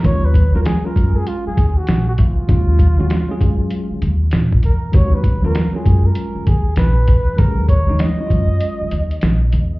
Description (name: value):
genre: hip hop, jazz-hop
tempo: 98 BPM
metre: 4/4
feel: swing 64% on 16ths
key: Eb minor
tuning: A4 = 439 Hz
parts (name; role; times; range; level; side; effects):
- breathy flugelhorn; melody; 0.0-9.5 s; F4 to Eb5; -26 LUFS; right 1 dB; analog delay
- tine electric piano; accompaniment; 0.0-9.0 s; Gb3 to Ab4; -23 LUFS; right 1 dB; overdrive, fast stereo tremolo
- upright bass; bass; 0.0-9.8 s; Bb1 to Gb2; -16 LUFS; equal; none
- lo-fi sampler-style drum kit; drums; 0.0-9.7 s; hi-hat, kick drum, snare drum; -16 LUFS; equal; none
room: light reverb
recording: heard muffled through a wall, club reverb, EQ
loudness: -13 LUFS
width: side -21 dB against mid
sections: 0.0-9.8 A section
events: break 8.6-9.8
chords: 0.0 Ebm11